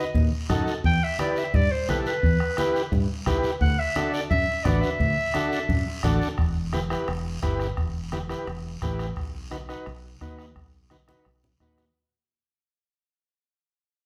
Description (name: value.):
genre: latin, cumbia.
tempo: 173 BPM.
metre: 4/4.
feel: straight.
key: E minor.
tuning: A4 = 441 Hz.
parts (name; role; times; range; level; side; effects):
clear clarinet; melody; 0.0-6.2 s; B4 to G5; -29 LUFS; equal; none.
overdriven combo organ; accompaniment; 0.0-11.9 s; D4 to B4; -32 LUFS; equal; none.
fingered electric bass; bass; 0.1-11.9 s; E1 to G2; -30 LUFS; equal; none.
bombo; percussion; 0.1-12.0 s; none; -30 LUFS; equal; none.
congas; percussion; 0.2-11.9 s; none; -36 LUFS; equal; none.
guiro; percussion; 0.2-12.0 s; none; -44 LUFS; equal; none.
room: wet large studio reverb, RT60 1.1 s.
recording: band playing live in one room.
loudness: -25 LUFS.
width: mono.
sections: 0.0-6.4 A section; 6.4-12.0 B section.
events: fade-out 6.4-12.0; drum fill 10.9-12.0.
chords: 0.0 B7 (rootless); 0.8 Em; 3.6 D; 6.4 Em; 9.2 B.